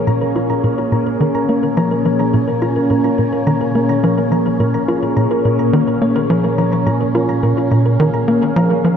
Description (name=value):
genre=ambient, sequencer-driven space music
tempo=106 BPM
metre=4/4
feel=straight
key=Bb minor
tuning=A4 = 442 Hz
part: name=phased analog pad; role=sustained chords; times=0.0-9.0 s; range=Bb2 to Bb4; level=-17 LUFS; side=equal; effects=phaser, chorus
part: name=wind-like tuned noise texture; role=texture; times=0.0-9.0 s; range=Db4 to F5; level=-24 LUFS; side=equal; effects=built-in reverb
part: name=thumb-piano-like synth pluck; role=arpeggios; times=0.1-8.9 s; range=Bb4 to Bb5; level=-23 LUFS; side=right 1 dB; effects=chorus, auto-pan, ping-pong delay
part: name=tight sequencer bass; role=riff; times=0.1-9.0 s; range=Bb2 to F4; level=-17 LUFS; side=equal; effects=ping-pong delay
room=wet plate reverb, RT60 2.5 s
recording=dark, warm production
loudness=-13 LUFS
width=side -7 dB against mid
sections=0.0-9.0 A section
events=filter sweep on analog synth bass 0.0-9.0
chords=0.0 Bbm7